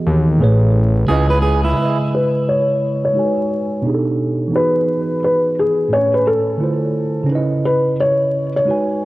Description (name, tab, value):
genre	lo-fi hip hop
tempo	87 BPM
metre	4/4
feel	swing 62% on 16ths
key	C# minor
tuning	A4 = 442 Hz
part	mellow tine electric piano	accompaniment	0.0-9.1 s	A2 to G#5	-18 LUFS	right 2 dB	medium stereo tremolo, cassette tape, low-pass filter
part	fat analog bass	bass	0.1-1.7 s	A1 to D#2	-14 LUFS	equal	none
part	electric guitar at the edge of break-up	second line	1.1-2.0 s	E4 to B4	-21 LUFS	right 3 dB	tape echo
part	felt-muted upright piano	melody	2.1-9.1 s	G#4 to C#5	-17 LUFS	left 1 dB	low-pass filter, tape echo
room	moderate lush hall reverb, RT60 3.2 s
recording	home recording on cassette, vinyl crackle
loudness	-14 LUFS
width	side -18 dB against mid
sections	0.0-1.8 A section; 1.8-9.1 B section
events	filter sweep 1.8-9.1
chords	0.4 Amaj7; 1.1 C#m9; 3.2 G#m7; 3.8 B7alt; 4.5 Emaj9; 5.9 Amaj7; 6.6 Dm9; 7.3 C#m9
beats	0.39 1.08 | 1.77 2.46 3.15 3.84 | 4.53 5.22 5.91 6.60 | 7.29 7.98 8.67